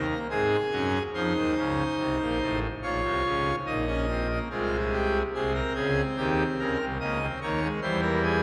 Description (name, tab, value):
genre	classical, baroque-style 3-part fugue for pipe organ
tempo	72 BPM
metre	4/4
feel	straight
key	unclear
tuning	A4 = 442 Hz
part	pipe organ, full organ	solo	0.0-8.4 s	A1 to Eb5	-27 LUFS	equal	none
room	wet cathedral reverb, RT60 4.7 s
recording	none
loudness	-27 LUFS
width	mono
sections	0.0-8.4 A section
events	none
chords	0.0 Ab; 1.1 F; 2.8 Bbm; 4.5 Fm/C; 6.2 Eb; 7.8 C/E